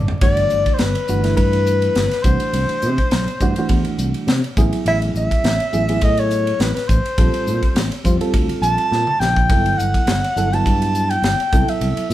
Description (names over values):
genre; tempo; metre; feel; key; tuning
electric jazz fusion; 104 BPM; 4/4; swing 55% on 16ths; G major; A4 = 440 Hz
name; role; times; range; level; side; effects
reed electric piano; accompaniment; 0.0-12.1 s; E3 to D5; -24 LUFS; right 3 dB; fast tremolo
fingered electric bass; bass; 0.0-12.1 s; G1 to C3; -20 LUFS; equal; none
crisp fusion drum kit; drums; 0.1-12.1 s; hi-hat, kick drum, ride cymbal, snare drum, toms; -20 LUFS; equal; none
mellow soprano saxophone; melody; 0.2-12.1 s; B4 to A5; -20 LUFS; left 1 dB; none
room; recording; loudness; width
moderate large studio reverb, RT60 1.1 s; band playing live in one room, vinyl crackle; -15 LUFS; side -14 dB against mid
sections
0.2-12.1 A section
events
reed electric piano fill 0.0; drum fill 0.0, 8.9-9.5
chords
0.2 Gmaj9; 2.2 Cadd9; 4.6 Asus2; 7.2 Bbmaj7sus2; 9.5 Gmaj9; 11.5 Cmaj7